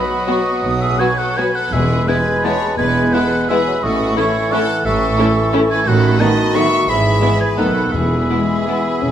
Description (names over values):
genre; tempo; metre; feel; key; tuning
classical; 154-190 BPM; 3/4; rubato; E major; A4 = 440 Hz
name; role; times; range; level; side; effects
clear oboe; second line; 0.0-9.1 s; C#5 to C#6; -21 LUFS; equal; none
clear studio violin section; second line; 0.0-9.1 s; E4 to E5; -26 LUFS; left 2 dB; none
flute section; second line; 0.0-9.1 s; B5 to D#6; -25 LUFS; right 3 dB; none
warm clarinet; second line; 0.0-9.1 s; F#4 to B4; -24 LUFS; left 3 dB; none
warm bassoon; accompaniment; 0.0-9.1 s; D#3 to G#3; -23 LUFS; right 1 dB; none
clear trombone section; sustained chords; 0.0-8.8 s; D#3 to A3; -28 LUFS; right 2 dB; none
mellow French horn section; sustained chords; 0.0-9.1 s; G#3 to B4; -25 LUFS; left 5 dB; none
warm symphonic violin section; melody; 0.3-8.8 s; D#4 to F#4; -28 LUFS; left 4 dB; none
clear symphonic viola section; accompaniment; 0.3-8.8 s; F#3 to C#4; -25 LUFS; right 1 dB; none
clear symphonic double bass section; bass; 0.6-9.1 s; E1 to B1; -22 LUFS; right 3 dB; none
rich symphonic cello section; bass; 0.6-9.1 s; E2 to B2; -22 LUFS; right 2 dB; none
timpani; percussion; 1.7-2.2, 7.9-8.5 s; E2; -25 LUFS; left 2 dB; none
room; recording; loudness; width
wet recital hall reverb, RT60 1.8 s; none; -13 LUFS; side -10 dB against mid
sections
0.0-9.1 A section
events
none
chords
0.0 B; 1.7 E; 3.8 A; 5.9 B7/A; 6.9 E/G#; 7.6 B7; 7.9 E